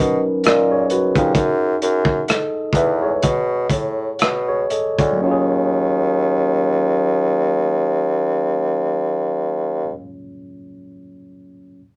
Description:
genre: R&B, neo-soul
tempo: 59-67 BPM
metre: 4/4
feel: swing 55% on 16ths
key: Eb minor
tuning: A4 = 441 Hz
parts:
  - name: tine electric piano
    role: accompaniment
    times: 0.0-11.8 s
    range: Gb3 to E5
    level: -24 LUFS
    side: equal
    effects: overdrive
  - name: clear bassoon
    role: bass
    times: 0.0-9.9 s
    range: D2 to Cb3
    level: -21 LUFS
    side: equal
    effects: none
  - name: crunchy breakbeat drum kit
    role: drums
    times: 0.4-5.2 s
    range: hi-hat, kick drum, rim click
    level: -22 LUFS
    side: equal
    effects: none
room: light reverb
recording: none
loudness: -19 LUFS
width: mono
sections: 0.0-5.2 A section; 5.2-9.3 B section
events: slowing down 0.0-5.2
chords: 0.0 Abm11; 1.3 Emaj9; 3.2 B7sus2; 5.2 Ebm11

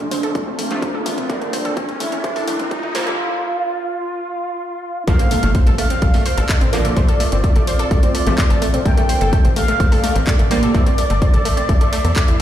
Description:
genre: melodic techno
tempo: 127 BPM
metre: 4/4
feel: straight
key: unclear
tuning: A4 = 441 Hz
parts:
  - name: expressive synth lead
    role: melody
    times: 0.0-12.4 s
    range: D4 to G5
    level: -23 LUFS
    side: equal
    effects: analog chorus, sidechain pumping, tape echo
  - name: evolving wavetable pad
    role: sustained chords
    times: 0.0-12.4 s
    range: G3 to E5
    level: -30 LUFS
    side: equal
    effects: chorus, built-in reverb, sidechain pumping
  - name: wide unison pluck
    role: arpeggios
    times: 0.0-12.3 s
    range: A3 to C6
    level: -24 LUFS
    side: equal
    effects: sidechain pumping, tape echo
  - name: overtone-sweeping drone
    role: drone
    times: 0.0-3.2 s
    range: Bb2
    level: -39 LUFS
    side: right 5 dB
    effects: none
  - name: house drum kit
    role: drums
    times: 0.0-12.4 s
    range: handclaps, hi-hat, toms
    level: -27 LUFS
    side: left 1 dB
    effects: none
  - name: riser and impact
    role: sound effects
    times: 0.0-7.0 s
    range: none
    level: -27 LUFS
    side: equal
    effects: none
  - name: electronic kick drum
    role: drums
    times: 0.4-12.3 s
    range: none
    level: -16 LUFS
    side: equal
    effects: none
  - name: synth brass stab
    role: stabs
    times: 0.7-12.4 s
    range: C3 to C4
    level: -26 LUFS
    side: right 3 dB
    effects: chorus, sidechain pumping, tape echo
  - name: tight sequencer bass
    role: bass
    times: 5.1-12.4 s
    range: G1 to E2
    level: -19 LUFS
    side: equal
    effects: tube saturation, sidechain pumping
room: light reverb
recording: played on a big sound system in a bare room, large studio reverb, high-pass filter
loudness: -15 LUFS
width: side -11 dB against mid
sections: 0.0-5.1 A section; 5.1-12.4 B section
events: build-up 0.0-5.1; drum fill 0.0-3.2; riser 0.0-3.2; filter sweep on synth arpeggio sound 0.0-5.1; filter sweep on analog synth lead 0.0-5.1; filter sweep 0.0-5.1; drop 5.1-12.4; impact 5.1-7.0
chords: 0.0 F; 1.3 Gm; 3.2 N.C.; 5.1 Bb; 7.0 F; 8.9 Gm; 10.7 Am

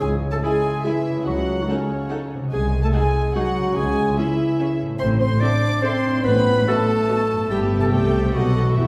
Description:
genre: cinematic, playful, whimsical film cue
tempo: 144 BPM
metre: 3/4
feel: straight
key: C# minor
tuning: A4 = 442 Hz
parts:
  - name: clear clarinet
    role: second line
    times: 0.0-8.9 s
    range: C#4 to D5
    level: -25 LUFS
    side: equal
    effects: none
  - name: warm chamber violin section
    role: second line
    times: 0.0-8.9 s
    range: C#5 to D6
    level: -32 LUFS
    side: equal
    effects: none
  - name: warm French horn section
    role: sustained chords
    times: 0.0-8.9 s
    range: C#3 to D4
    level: -29 LUFS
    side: equal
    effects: none
  - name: concert harp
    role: arpeggios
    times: 0.0-8.9 s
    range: G2 to D#5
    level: -30 LUFS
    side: equal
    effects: none
  - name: dark chamber cello section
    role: bass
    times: 0.0-8.9 s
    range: B#1 to C3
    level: -30 LUFS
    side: equal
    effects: none
  - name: rich chamber double bass section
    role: bass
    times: 0.0-8.9 s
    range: E1 to C#2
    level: -27 LUFS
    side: equal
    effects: none
  - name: warm chamber violin section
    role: melody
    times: 0.4-8.9 s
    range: D#5 to G#5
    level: -43 LUFS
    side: equal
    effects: none
  - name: rich chamber viola section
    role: accompaniment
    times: 0.4-8.9 s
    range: A3 to A4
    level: -32 LUFS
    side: equal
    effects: none
room: wet scoring stage reverb, RT60 1.7 s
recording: heard from further back in the room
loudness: -20 LUFS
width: mono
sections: 0.0-8.9 A section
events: none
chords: 0.0 C#m; 1.3 D#m7b5/C#; 2.5 G#7/B#; 3.8 C#m; 5.0 Am; 6.2 B7/A; 7.5 Em/G; 7.9 Am/C; 8.3 B7

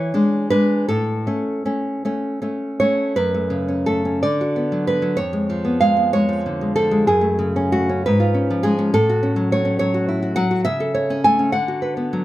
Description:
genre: romantic piece for solo classical guitar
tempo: 52-71 BPM (dotted quarters)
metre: 6/8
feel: rubato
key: A major, F# minor from 3.2 s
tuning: A4 = 439 Hz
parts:
  - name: nylon-string guitar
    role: solo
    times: 0.0-12.2 s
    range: E#2 to G#5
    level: -17 LUFS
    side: equal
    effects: none
room: moderate recital hall reverb, RT60 1.6 s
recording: close, detailed microphones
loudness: -17 LUFS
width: side -15 dB against mid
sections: 0.0-3.2 A section; 3.2-12.2 B section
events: none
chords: 0.0 E7; 0.9 A; 3.2 F#m; 4.2 Bm/D; 5.2 C#7/E#; 7.1 F#m; 8.1 C#7/G#; 8.9 F#m/A; 10.7 A/C#; 11.5 Bm/D

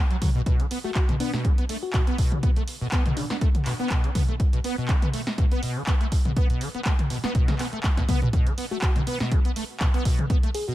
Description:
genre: acid house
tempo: 122 BPM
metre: 4/4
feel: swing 55% on 16ths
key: unclear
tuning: A4 = 441 Hz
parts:
  - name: acid bass, saw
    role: riff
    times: 0.1-10.7 s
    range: B2 to B3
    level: -30 LUFS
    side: equal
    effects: tube saturation, ensemble chorus, sidechain pumping, dub echo
  - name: punchy analog drum machine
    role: drums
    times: 0.1-10.7 s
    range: handclaps, hi-hat, snare drum, toms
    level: -30 LUFS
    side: equal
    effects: none
  - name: electronic kick drum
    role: drums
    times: 0.2-10.4 s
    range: none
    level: -22 LUFS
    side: equal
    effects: overdrive
  - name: bell-like FM electric piano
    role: melody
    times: 0.8-3.4, 8.7-10.7 s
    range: D4 to G#4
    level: -34 LUFS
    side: left 2 dB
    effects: chorus, cassette tape, ping-pong delay
room: little or no reverb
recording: none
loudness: -22 LUFS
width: side -15 dB against mid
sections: 0.0-10.7 A section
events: drum fill 7.8-8.3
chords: none

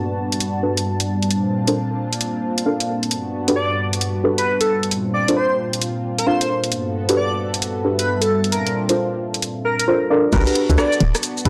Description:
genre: UK garage, two-step garage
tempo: 133 BPM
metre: 4/4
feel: swing 64% on 16ths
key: G major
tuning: A4 = 440 Hz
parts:
  - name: warm analog pad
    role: sustained chords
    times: 0.0-11.5 s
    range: G2 to A5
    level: -27 LUFS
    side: equal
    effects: chorus, sidechain pumping
  - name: deep dark ambient pad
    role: texture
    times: 0.0-9.9 s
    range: G3 to A5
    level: -29 LUFS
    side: equal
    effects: chorus, built-in reverb, sidechain pumping
  - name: garage drum kit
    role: drums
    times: 0.3-11.5 s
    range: crash cymbal, hi-hat, rim click, shaker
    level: -25 LUFS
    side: equal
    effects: studio reverb
  - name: deep mellow chord stab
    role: stabs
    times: 0.6-11.5 s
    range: D4 to F5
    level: -22 LUFS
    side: equal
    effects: chorus, cassette tape, analog delay
  - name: airy dreamy lead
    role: melody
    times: 3.6-10.9 s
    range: A4 to D5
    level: -24 LUFS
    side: equal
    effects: chorus, analog delay
  - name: hollow knocking FM bass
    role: bass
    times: 10.3-11.1 s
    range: D1 to D2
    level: -18 LUFS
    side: equal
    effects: none
  - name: electronic kick drum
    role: drums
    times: 10.3-11.5 s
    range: none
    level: -22 LUFS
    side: equal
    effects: studio reverb
room: moderate digital room reverb, RT60 1.1 s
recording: dry, gritty hardware recording, cassette tape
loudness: -20 LUFS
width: mono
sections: 0.0-10.3 A section; 10.3-11.5 B section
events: filter sweep on synth stab 0.0-10.3; drop 10.3-11.5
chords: 0.0 Gmaj9; 1.3 Bbmaj9; 3.1 Gmaj9; 4.9 Bbmaj9; 6.7 Gmaj9; 8.5 Bbmaj9; 10.3 Gmaj9

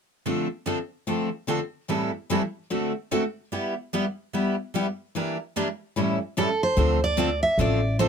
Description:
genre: acoustic string swing (jazz manouche)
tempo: 147 BPM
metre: 4/4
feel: swing 62% on 8ths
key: D minor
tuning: A4 = 440 Hz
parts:
  - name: picked steel-string acoustic guitar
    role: accompaniment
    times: 0.3-8.1 s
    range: A2 to A4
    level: -27 LUFS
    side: left 6 dB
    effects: none
  - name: picked steel-string acoustic guitar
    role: accompaniment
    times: 0.3-8.1 s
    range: A2 to Bb4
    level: -28 LUFS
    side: right 9 dB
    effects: none
  - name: picked steel-string acoustic guitar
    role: melody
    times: 6.4-8.1 s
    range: A4 to E5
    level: -23 LUFS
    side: right 2 dB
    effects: none
  - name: upright bass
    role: bass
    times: 6.8-8.1 s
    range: A1 to D2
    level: -24 LUFS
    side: equal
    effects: none
room: light reverb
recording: close, detailed microphones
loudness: -24 LUFS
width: side -7 dB against mid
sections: 0.3-6.8 A section; 6.8-8.1 B section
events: none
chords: 0.3 Dm7; 1.9 Am7; 2.7 D7; 3.5 G6; 5.1 Em7b5; 6.0 A7; 6.8 Dm7

